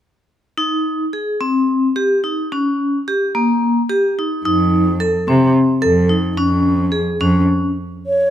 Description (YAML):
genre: contemporary instrumental, contemporary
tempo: 217 BPM (eighths)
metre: 7/8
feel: straight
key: unclear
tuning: A4 = 444 Hz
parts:
  - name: vibraphone with medium hard mallets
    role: arpeggios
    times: 0.6-7.7 s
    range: Bb3 to A4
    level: -16 LUFS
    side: left 1 dB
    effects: none
  - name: dark cello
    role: bass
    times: 4.5-7.4 s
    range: F2 to C3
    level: -17 LUFS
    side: right 1 dB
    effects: none
  - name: mellow hollow baroque flute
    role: melody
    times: 8.1-8.3 s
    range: Db5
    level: -13 LUFS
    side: right 1 dB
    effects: none
room: light reverb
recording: close, detailed microphones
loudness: -14 LUFS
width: side -10 dB against mid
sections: 0.6-8.3 A section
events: stop 7.8-8.3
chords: 0.6 Abmaj7; 2.5 Eb7; 4.5 F7; 6.4 Db/F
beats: | 0.59 0.87 1.14 1.42 1.70 1.97 2.25 | 2.52 2.80 3.08 3.35 3.63 3.90 4.18 | 4.46 4.73 5.01 5.29 5.56 5.84 6.11 | 6.39 6.67 6.94 7.22 7.49 7.77 8.04